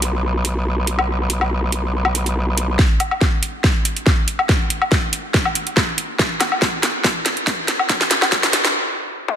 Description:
heavy wobble dubstep; 141 BPM; 4/4; swing 53% on 16ths, half-time; A4 = 440 Hz
growl bass; bass; 0.0-2.8 s; B1; -19 LUFS; equal; chorus, overdrive
dubstep drum kit; drums; 0.0-9.4 s; hi-hat, snare drum, toms, woodblock; -18 LUFS; equal; high-pass filter on hats, high-pass filter on perc, high-pass filter on snare, high-pass filter on toms
electronic kick drum; drums; 2.8-8.4 s; -18 LUFS; equal; overdrive
light reverb; dense, heavily limited modern master, high-pass filter; -16 LUFS; side -8 dB against mid
0.0-2.8 A section; 2.8-9.4 B section
build-up 2.8-9.4; drum fill 2.8-8.7; filter sweep 2.8-9.4; stop 8.7-9.4
0.23 0.66 | 1.09 1.51 1.94 2.36 | 2.79 3.21 3.64 4.06 | 4.49 4.92 5.34 5.77 | 6.19 6.62 7.04 7.47 | 7.89 8.32 8.74 9.17

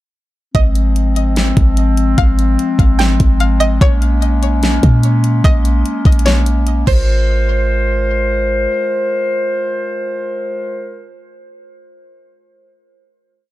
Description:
hip hop, atmospheric cloud-rap; 147 BPM; 4/4; half-time; Ab major; A4 = 444 Hz
string-like resonator pluck; melody; 0.5-8.3 s; C5 to G5; -22 LUFS; equal; chorus, ping-pong delay
warm woodwind section; sustained chords; 0.5-11.1 s; F3 to C5; -18 LUFS; left 2 dB; sidechain pumping
clean 808-style bass; bass; 0.5-8.7 s; Ab1 to Bb2; -14 LUFS; equal
smooth R&B drum kit; drums; 0.5-7.0 s; crash cymbal, hi-hat, kick drum, snare drum; -14 LUFS; equal
digital ambience; dark, warm production; -12 LUFS; side -16 dB against mid
0.5-7.1 verse; 7.1-10.3 final hit
0.5 Ab6; 3.8 Bbm7; 6.9 Ab69
| 0.55 0.95 1.36 1.77 | 2.18 2.59 3.00 3.40 | 3.81 4.22 4.63 5.04 | 5.45 5.85 6.26 6.67 | 7.08 7.49 7.89 8.30 | 8.71 9.12 9.53 9.94

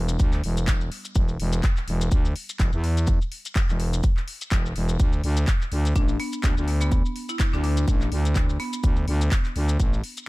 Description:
bass house; 125 BPM; 4/4; swing 56% on 16ths; A4 = 438 Hz
growling FM bass; bass; 0.0-10.0 s; E1 to E2; -23 LUFS; equal; overdrive, sidechain pumping
house drum kit; drums; 0.1-10.3 s; handclaps, hi-hat; -34 LUFS; left 1 dB
maracas; percussion; 0.1-10.3 s; -38 LUFS; left 3 dB
electronic kick drum; drums; 0.2-9.9 s; -22 LUFS; equal
marimba with hard mallets; melody; 6.0-9.3 s; B3 to E4; -33 LUFS; left 1 dB; ping-pong delay
little or no reverb; -21 LUFS; side -21 dB against mid
0.0-10.3 A section
0.0 N.C.; 5.0 D5
0.20 0.68 | 1.16 1.64 2.12 2.60 | 3.08 3.56 4.04 4.52 | 5.00 5.48 5.96 6.44 | 6.92 7.40 7.88 8.36 | 8.84 9.32 9.80

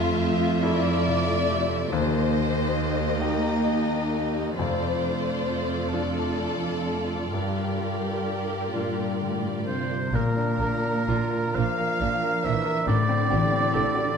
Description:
cinematic; 44 BPM (dotted quarters); 6/8; uneven beats, rubato; A4 = 436 Hz
warm symphonic violin section; melody; 0.0-13.8 s; G4 to E5; -35 LUFS; left 2 dB
warm symphonic violin section; second line; 0.0-14.1 s; Eb4 to F5; -30 LUFS; left 3 dB
bright concert grand piano; accompaniment; 0.0-14.2 s; Eb2 to C5; -30 LUFS; left 2 dB
rich studio viola section; accompaniment; 0.0-13.8 s; A3 to Bb4; -32 LUFS; right 3 dB
concert harp; arpeggios; 0.0-14.2 s; F2 to E5; -31 LUFS; left 8 dB
warm symphonic cello section; bass; 0.0-14.2 s; Eb2 to F3; -30 LUFS; right 4 dB
clear oboe; second line; 9.7-14.2 s; Bb4 to F5; -27 LUFS; right 3 dB
warm symphonic double bass section; bass; 10.1-13.8 s; A1 to Bb1; -30 LUFS; right 5 dB
wet recital hall reverb, RT60 1.6 s; dark, warm production; -23 LUFS; side -6 dB against mid
0.0-10.1 A section; 10.1-14.2 B section
0.0 Fmaj7; 1.9 Cm7/Eb; 4.6 Dm7/F; 7.3 Gm7; 10.1 Bb; 12.9 Am7
0.62 | 1.92 3.21 | 4.58 5.93 | 7.33 8.73 | 10.13 11.56 | 12.88

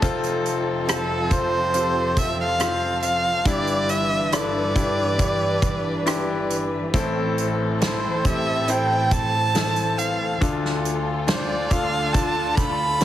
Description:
pop ballad; 69 BPM; 4/4; straight; A minor; A4 = 440 Hz
clear concert grand piano; accompaniment; 0.0-13.0 s; F1 to C5; -25 LUFS; left 3 dB
muted studio string section; sustained chords; 0.0-13.0 s; D2 to B4; -27 LUFS; equal
loose indie drum kit; drums; 0.0-13.0 s; hi-hat, kick drum, rim click, snare drum; -24 LUFS; right 1 dB
dark violin; melody; 0.9-13.0 s; A4 to B5; -24 LUFS; right 2 dB
moderate concert hall reverb, RT60 2.1 s; heavily compressed radio sound; -20 LUFS; side -12 dB against mid
0.0-13.0 A section
0.0 F; 3.5 Em7/G; 6.9 Am; 10.4 Dm
| 0.02 0.88 1.74 2.60 | 3.46 4.32 5.19 6.06 | 6.94 7.82 8.69 9.55 | 10.42 11.28 12.14 13.01

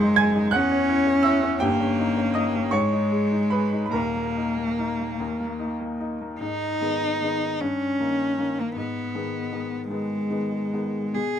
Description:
classical, romantic duo for cello and grand piano; 46-56 BPM (dotted quarters); 6/8; rubato; G# minor; A4 = 440 Hz
rich cello; melody; 0.0-11.4 s; G#3 to G#4; -24 LUFS; left 1 dB
bright baby grand piano; accompaniment; 0.0-11.4 s; D#1 to G#6; -26 LUFS; right 1 dB
little or no reverb; close, detailed microphones; -22 LUFS; side -9 dB against mid
0.0-6.4 A section; 6.4-11.4 B section
0.0 G#7/F#; 0.5 C#m/E; 1.6 D#7/G; 2.7 G#m; 3.9 D#5; 6.4 G#m; 7.6 D#/G; 8.8 G#m
0.54 | 1.61 2.74 | 3.94 5.19 | 6.41 7.61 | 8.77 9.89 | 11.14

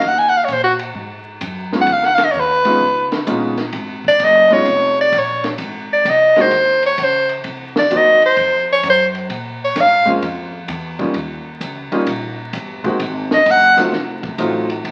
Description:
jazz, small-group swing and bop; 129 BPM; 4/4; swing 67% on 8ths; Ab mixolydian; A4 = 442 Hz
breathy soprano saxophone; melody; 0.0-10.1, 13.3-13.8 s; Gb4 to Ab5; -15 LUFS; equal
upright bass; bass; 0.0-14.9 s; F1 to Bb2; -32 LUFS; equal
compact cocktail drum kit; drums; 0.0-14.9 s; hi-hat, kick drum, ride cymbal, snare drum; -28 LUFS; equal
clear grand piano; accompaniment; 1.7-14.7 s; Gb3 to Gb4; -23 LUFS; equal
wet large studio reverb, RT60 1.2 s; very old 78 rpm record, vinyl crackle; -15 LUFS; mono
0.0-14.9 A section
soprano saxophone solo 0.0-14.9
0.0 Eb5; 0.9 Ab5; 1.9 Db9; 5.6 Ab; 7.4 Cm7b5; 8.4 F5; 9.3 Bbm7; 11.2 Eb7; 13.0 Ab7; 13.9 F7b9
| 0.02 0.48 0.95 1.41 | 1.88 2.34 2.81 3.27 | 3.73 4.20 4.66 5.13 | 5.59 6.06 6.52 6.98 | 7.45 7.91 8.37 8.84 | 9.30 9.76 10.23 10.69 | 11.15 11.61 12.08 12.54 | 13.00 13.46 13.92 14.39 | 14.85

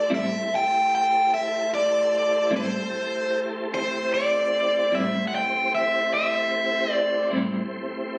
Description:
blues; 50 BPM (dotted quarters); 12/8; straight; A minor; A4 = 441 Hz
biting overdriven guitar; melody; 0.0-7.3 s; C5 to G5; -24 LUFS; equal; phaser, slapback echo
tonewheel organ; sustained chords; 0.0-8.2 s; A3 to C5; -33 LUFS; equal; chorus vibrato, fast rotary speaker
semi-hollow electric guitar; accompaniment; 0.1-7.6 s; A2 to E4; -29 LUFS; equal; tremolo
wet club reverb, RT60 0.8 s; recorded on a phone in the room, club reverb; -24 LUFS; mono
0.0-8.2 A section
0.0 Am7
0.11 1.31 2.51 | 3.71 4.91 6.11 7.31

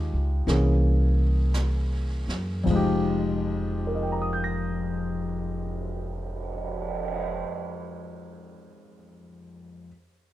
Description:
jazz ballad; 51-61 BPM; 4/4; swing 67% on 8ths; F minor; A4 = 440 Hz
warm grand piano; accompaniment; 0.0-9.9 s; F2 to Bb6; -29 LUFS; left 2 dB
upright bass; bass; 0.0-7.4 s; F1 to Gb2; -26 LUFS; equal
jazz brush drum kit; drums; 0.5-7.1 s; brushed snare drum, cymbal swell, hi-hat, kick drum, ride cymbal, snare drum; -35 LUFS; right 5 dB
light reverb; dark, warm production; -24 LUFS; side -14 dB against mid
0.0-2.7 A section; 2.7-7.4 B section
slowing down 0.0-2.7
0.5 C7b9b13; 2.7 Fm9
0.48 1.53 | 2.67 3.85 5.01 6.19

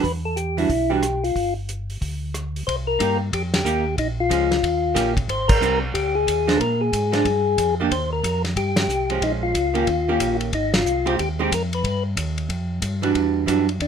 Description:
soul jazz organ trio; 183 BPM; 4/4; swing 63% on 8ths; C minor; A4 = 440 Hz
percussive tonewheel organ; melody; 0.0-13.9 s; D4 to C5; -22 LUFS; left 3 dB; slow rotary speaker
archtop guitar, miked and amplified; accompaniment; 0.0-13.7 s; Eb3 to G4; -23 LUFS; right 6 dB
mellow tonewheel organ; bass; 0.0-13.9 s; G1 to Bb2; -26 LUFS; equal; chorus vibrato, slow rotary speaker
warm soul drum kit; drums; 0.0-13.9 s; crash cymbal, hi-hat, kick drum, ride cymbal, rim click, snare drum; -26 LUFS; equal
light reverb; minimal, uncompressed stereo recording; -19 LUFS; side -7 dB against mid
0.0-2.7 A section; 2.7-13.1 B section
band accent 3.5, 5.4, 8.7, 10.7
0.0 Em9; 1.4 G5; 2.7 Cm7; 4.0 Bbm7; 4.6 Eb7; 5.3 Abmaj7; 6.6 Bb7; 7.9 Eb; 9.2 Bbm7; 9.9 Eb7; 10.5 Abmaj7; 11.8 G5; 13.1 Em9
| 0.04 0.36 0.69 1.02 | 1.35 1.68 2.01 2.33 | 2.66 2.99 3.32 3.65 | 3.97 4.30 4.63 4.96 | 5.29 5.61 5.94 6.27 | 6.59 6.92 7.25 7.58 | 7.91 8.23 8.56 8.89 | 9.21 9.54 9.87 10.20 | 10.53 10.85 11.18 11.51 | 11.84 12.16 12.49 12.82 | 13.14 13.47 13.80

